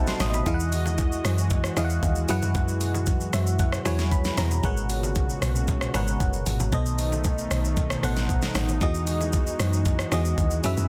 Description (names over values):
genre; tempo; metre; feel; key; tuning
amapiano; 115 BPM; 4/4; straight; unclear; A4 = 440 Hz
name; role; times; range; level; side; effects
FM electric piano; accompaniment; 0.0-10.9 s; B2 to D#6; -32 LUFS; equal; chorus
warm analog pad; sustained chords; 0.0-10.9 s; A#2 to D#5; -34 LUFS; equal; lush chorus, sidechain pumping
deep log drum bass; bass; 0.0-10.9 s; F#1 to F#2; -29 LUFS; equal; none
smooth R&B drum kit; drums; 0.1-10.9 s; hi-hat, kick drum, rim click, shaker, snare drum; -30 LUFS; equal; none
congas and bongos; percussion; 0.2-10.9 s; none; -39 LUFS; equal; none
room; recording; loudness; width
little or no reverb; dense, heavily limited modern master; -25 LUFS; mono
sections
0.0-10.9 A section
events
FM electric piano fill 0.0-0.5, 3.1-4.6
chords
0.5 Emaj9; 2.3 F#9sus4; 4.6 G#m11; 6.7 B7b9; 8.8 Emaj9